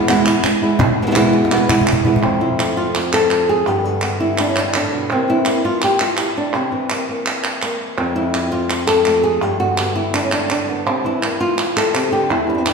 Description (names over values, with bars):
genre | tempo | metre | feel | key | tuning
flamenco | 167 BPM | 4/4 | straight | unclear | A4 = 440 Hz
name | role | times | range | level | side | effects
flamenco guitar | melody | 0.0-12.7 s | E2 to A4 | -16 LUFS | equal | none
palmas hand claps | percussion | 0.1-12.7 s | none | -21 LUFS | right 2 dB | none
cajon | percussion | 0.4-2.2 s | none | -22 LUFS | left 1 dB | none
room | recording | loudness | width
wet scoring stage reverb, RT60 1.7 s | recorded in a church or concert hall | -15 LUFS | side -5 dB against mid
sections
0.0-2.2 A section; 2.2-12.7 B section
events
drum fill 1.3-2.2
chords
0.0 E; 2.2 F; 3.7 G; 5.1 C7; 8.0 F; 9.4 G; 10.9 C7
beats
0.09 0.44 | 0.80 1.16 1.51 1.87 | 2.23 2.59 2.94 3.30 | 3.66 4.02 4.38 4.74 | 5.10 5.46 5.82 6.18 | 6.54 6.90 7.26 7.62 | 7.98 8.34 8.70 9.06 | 9.42 9.78 10.14 10.50 | 10.86 11.22 11.58 11.94 | 12.30 12.66